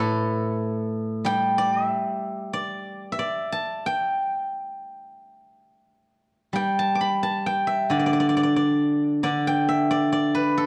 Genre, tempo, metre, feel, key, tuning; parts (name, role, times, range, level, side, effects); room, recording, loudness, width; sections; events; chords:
chinese traditional, Chinese solo plucked strings; 90 BPM; 4/4; uneven beats, rubato; G gong mode; A4 = 440 Hz
steel-string zither; solo; 0.0-10.7 s; A2 to D6; -24 LUFS; equal
moderate recital hall reverb, RT60 1.7 s; dark, warm production; -24 LUFS; mono
0.0-6.6 A section; 6.6-10.7 B section